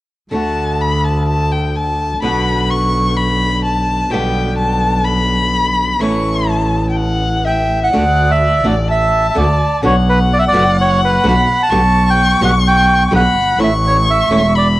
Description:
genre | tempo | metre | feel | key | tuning
tango | 126 BPM | 4/4 | rubato | D major | A4 = 440 Hz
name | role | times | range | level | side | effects
dark violin | second line | 0.3-14.8 s | D5 to C#6 | -18 LUFS | left 3 dB | cassette tape
flamenco guitar | accompaniment | 0.3-14.4 s | B2 to G4 | -20 LUFS | right 1 dB | cassette tape
clear double bass | bass | 0.3-14.8 s | E1 to D2 | -16 LUFS | equal | none
bandoneon | melody | 7.5-14.7 s | B4 to B5 | -14 LUFS | right 1 dB | cassette tape
room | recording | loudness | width
moderate spring reverb, RT60 1.6 s, small room ambience | home recording on cassette | -12 LUFS | side -17 dB against mid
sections
0.3-7.9 A section; 7.9-14.8 B section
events
none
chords
0.3 D; 2.2 Bm; 4.1 G/B; 6.0 A; 7.9 D; 9.8 Bm; 11.7 G/B; 13.6 A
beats
| 0.32 0.80 1.27 1.75 | 2.23 2.70 3.17 3.65 | 4.12 4.58 5.06 5.53 | 6.00 6.48 6.96 7.45 | 7.93 8.41 8.88 9.36 | 9.83 10.30 10.77 11.24 | 11.71 12.18 12.65 13.12 | 13.60 14.07 14.55

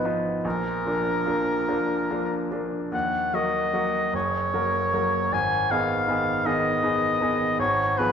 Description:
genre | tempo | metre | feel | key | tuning
classical, romantic duo for oboe and grand piano | 48-54 BPM (dotted quarters) | 6/8 | rubato | unclear | A4 = 440 Hz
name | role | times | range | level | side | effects
clear oboe | melody | 0.0-8.1 s | Bb4 to Ab5 | -24 LUFS | left 1 dB | none
bright grand piano | accompaniment | 0.0-8.1 s | Gb1 to Bb4 | -26 LUFS | equal | none
room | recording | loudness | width
wet recital hall reverb, RT60 1.6 s | recorded in a church or concert hall | -22 LUFS | side -7 dB against mid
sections
0.0-8.1 A section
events
none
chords
0.4 Bb; 2.9 Ebm; 4.1 Gb; 5.3 Abm; 7.6 Fdim/Ab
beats
| 0.44 1.69 | 2.93 4.14 | 5.33 6.46 | 7.59

